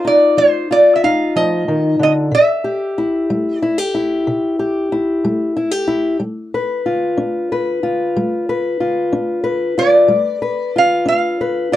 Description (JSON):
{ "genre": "acoustic country blues, solo or duo", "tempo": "62 BPM (dotted quarters)", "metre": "12/8", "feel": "straight", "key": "unclear", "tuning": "A4 = 440 Hz", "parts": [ { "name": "lap resonator guitar", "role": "melody", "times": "0.0-11.8 s", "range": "C5 to F5", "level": "-13 LUFS", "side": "equal", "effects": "none" }, { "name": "fingerpicked old ladder-braced acoustic guitar", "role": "accompaniment", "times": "0.0-11.8 s", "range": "C3 to B4", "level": "-17 LUFS", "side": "left 2 dB", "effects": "none" } ], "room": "moderate booth ambience, RT60 0.2 s", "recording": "dry, close 1970s-style studio recording", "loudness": "-14 LUFS", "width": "side -13 dB against mid", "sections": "0.0-11.8 A section", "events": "none", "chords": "0.0 F7(no3); 2.3 C; 6.2 G7" }